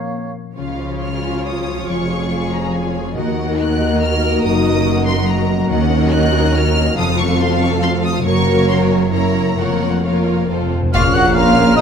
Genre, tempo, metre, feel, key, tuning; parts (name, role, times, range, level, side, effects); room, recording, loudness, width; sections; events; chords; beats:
classical, dramatic, fast romantic movement for symphony orchestra; 129-146 BPM; 3/4; rubato; Db major, Bb minor from 5.7 s; A4 = 441 Hz
mellow flute section; second line; 0.0-0.4, 10.9-11.8 s; F5 to Db6; -23 LUFS; left 2 dB
warm oboe; second line; 0.0-0.3, 10.9-11.8 s; Db5 to Gb5; -21 LUFS; right 1 dB
mellow French horn section; sustained chords; 0.0-0.3, 10.9-11.8 s; Bb3 to F4; -23 LUFS; left 3 dB
concert harp; arpeggios; 0.0-11.8 s; F2 to Db6; -22 LUFS; left 8 dB
rich symphonic violin section; melody; 0.6-11.8 s; F5 to Gb6; -24 LUFS; left 2 dB
warm symphonic violin section; second line; 0.6-11.8 s; F4 to Gb5; -22 LUFS; left 2 dB
warm symphonic viola section; accompaniment; 0.6-11.8 s; F3 to Bb4; -22 LUFS; right 2 dB
dark studio double bass section; bass; 0.6-11.8 s; F1 to Eb2; -21 LUFS; right 4 dB
rich symphonic cello section; bass; 0.6-11.8 s; Eb2 to Db3; -21 LUFS; right 1 dB
cymbal swell, clash cymbals and concert bass drum; percussion; 8.2-11.7 s; -26 LUFS; equal
timpani; percussion; 10.5-10.9 s; F2; -22 LUFS; left 1 dB
clear trombone section; sustained chords; 10.9-11.8 s; Bb2 to Bb3; -23 LUFS; right 4 dB
mellow trumpet; stabs; 10.9-11.8 s; Eb4 to Gb4; -20 LUFS; right 3 dB
warm tuba; bass; 10.9-11.8 s; Bb1; -20 LUFS; right 4 dB
light reverb; -14 LUFS; side -7 dB against mid
0.6-10.9 A section
timpani fill 10.5-10.9; band accent 10.9-11.4
0.0 Bbm; 0.6 Db; 1.9 Db/F; 3.2 Ebm; 4.4 Ebm/Gb; 5.7 Ebm7; 7.0 F7; 8.3 Gb; 9.1 Gb7; 9.6 Bbm/F; 10.5 F; 10.9 Bbm
0.14 | 0.57 1.02 1.46 | 1.89 2.32 2.75 | 3.17 3.60 4.02 | 4.44 4.86 5.28 | 5.71 6.13 6.55 | 6.97 7.40 7.83 | 8.25 8.69 9.13 | 9.59 10.05 10.50 | 10.94 11.36 11.77